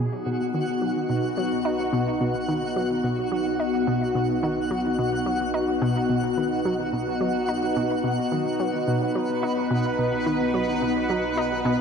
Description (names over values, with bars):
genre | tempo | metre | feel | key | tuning
ambient, sequencer-driven space music | 108 BPM | 4/4 | straight | B major | A4 = 440 Hz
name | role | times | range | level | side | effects
sweeping resonant pad | sustained chords | 0.0-11.8 s | B3 to B4 | -24 LUFS | left 1 dB | chorus
soft round pluck | arpeggios | 0.0-11.8 s | none | barely audible | none | none
analog pluck | riff | 0.0-11.8 s | B2 to D#4 | -28 LUFS | right 1 dB | chorus, analog delay
analog drone | bass | 1.3-11.8 s | B1 | -46 LUFS | right 1 dB | chorus
twinkling granular texture | texture | 0.0-11.8 s | F#4 to F#5 | -32 LUFS | right 1 dB | built-in reverb
room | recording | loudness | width
wet huge ambient reverb, RT60 8.3 s | dark, warm production | -22 LUFS | side -6 dB against mid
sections
0.0-11.8 A section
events
fade-in on synth drone 0.0-11.8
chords
0.0 B